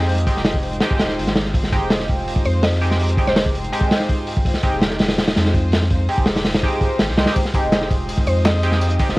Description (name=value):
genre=drum and bass, jungle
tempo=165 BPM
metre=4/4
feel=straight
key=F minor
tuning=A4 = 440 Hz
part: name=warm studio string section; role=sustained chords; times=0.0-9.2 s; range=Ab3 to C5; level=-28 LUFS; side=left 1 dB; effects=cassette tape
part: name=band-passed chord stab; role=stabs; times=0.0-9.2 s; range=Ab3 to G4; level=-24 LUFS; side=right 1 dB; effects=chorus, phaser, cassette tape, dub echo
part: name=soft dub sub bass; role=bass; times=0.0-9.2 s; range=Eb1 to F2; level=-21 LUFS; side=equal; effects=none
part: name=crunchy breakbeat drum kit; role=drums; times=0.0-9.2 s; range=hi-hat, kick drum, snare drum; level=-18 LUFS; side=equal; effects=none
part: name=mallet-like synth pluck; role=melody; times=2.5-3.4, 8.3-8.7 s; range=C5 to Eb5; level=-26 LUFS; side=equal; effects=chorus, cassette tape, dub echo
part: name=breakbeat sampler-style drum kit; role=drums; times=7.4-9.1 s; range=hi-hat, snare drum, tambourine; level=-32 LUFS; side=equal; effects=none
part: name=wind-like tuned noise texture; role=texture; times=7.9-9.2 s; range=Eb5 to Eb6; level=-33 LUFS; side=equal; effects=built-in reverb, cassette tape
room=light reverb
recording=home recording on cassette, vinyl crackle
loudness=-16 LUFS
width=side -21 dB against mid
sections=0.0-9.2 A section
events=none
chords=0.0 Fm7